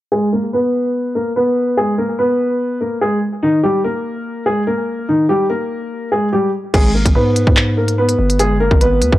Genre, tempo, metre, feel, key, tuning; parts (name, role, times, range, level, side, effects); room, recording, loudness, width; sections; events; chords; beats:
hip hop, drill; 145 BPM; 4/4; half-time; G# harmonic minor; A4 = 439 Hz
dark grand piano; melody; 0.1-9.2 s; D#3 to B4; -15 LUFS; equal; low-pass filter
growling 808-style bass; bass; 6.7-9.2 s; G1 to G#2; -16 LUFS; equal
drill drum kit; drums; 6.7-9.2 s; crash cymbal, handclaps, hi-hat, kick drum; -14 LUFS; equal
little or no reverb; dry, gritty hardware recording, transformer saturation; -14 LUFS; side -15 dB against mid
0.1-6.7 A section; 6.7-9.2 B section
filter sweep on grand piano 0.1-6.7
0.1 G#m; 3.4 D# (rootless); 6.7 G#m
| 0.12 0.53 0.95 1.36 | 1.77 2.19 2.60 3.02 | 3.43 3.84 4.26 4.67 | 5.08 5.50 5.91 6.33 | 6.74 7.15 7.57 7.98 | 8.39 8.81